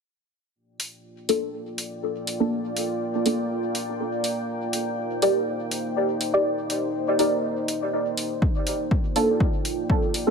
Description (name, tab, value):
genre	dub techno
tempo	122 BPM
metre	4/4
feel	straight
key	G minor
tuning	A4 = 440 Hz
part	deep dark ambient pad	sustained chords	1.6-10.3 s	Bb3 to G5	-28 LUFS	equal	chorus, built-in reverb, sidechain pumping
part	electronic hi-hat	drums	0.8-10.2 s	none	-29 LUFS	equal	overdrive
part	deep mellow chord stab	stabs	1.3-10.3 s	Bb3 to D5	-25 LUFS	equal	chorus, phaser, sidechain pumping, dub echo
part	electronic kick drum	drums	8.4-10.0 s	none	-23 LUFS	equal	overdrive
room	wet echo chamber reverb, RT60 1.6 s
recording	none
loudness	-23 LUFS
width	side -5 dB against mid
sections	0.6-8.4 A section; 8.4-10.3 B section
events	filter sweep on synth stab 0.6-8.4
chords	0.6 Gm7; 4.5 Cm7; 8.4 Gm7